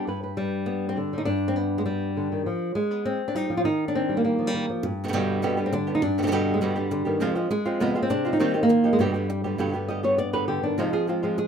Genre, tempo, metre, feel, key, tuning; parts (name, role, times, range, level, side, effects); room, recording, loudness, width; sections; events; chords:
flamenco; 202 BPM; 4/4; straight; G phrygian dominant; A4 = 440 Hz
flamenco guitar; melody; 0.0-11.5 s; G2 to Eb5; -23 LUFS; equal
flamenco guitar; stabs; 4.8-11.4 s; F2 to G4; -28 LUFS; right 4 dB
wet studio ambience, RT60 0.5 s; rough home demo mix; -22 LUFS; side -7 dB against mid
0.1-9.6 A section; 9.6-11.5 B section
nylon-string guitar solo 9.6-11.5
0.1 G; 2.5 Fm; 3.6 Eb; 4.8 G; 7.2 Fm; 8.4 Eb; 9.0 G; 10.8 Fm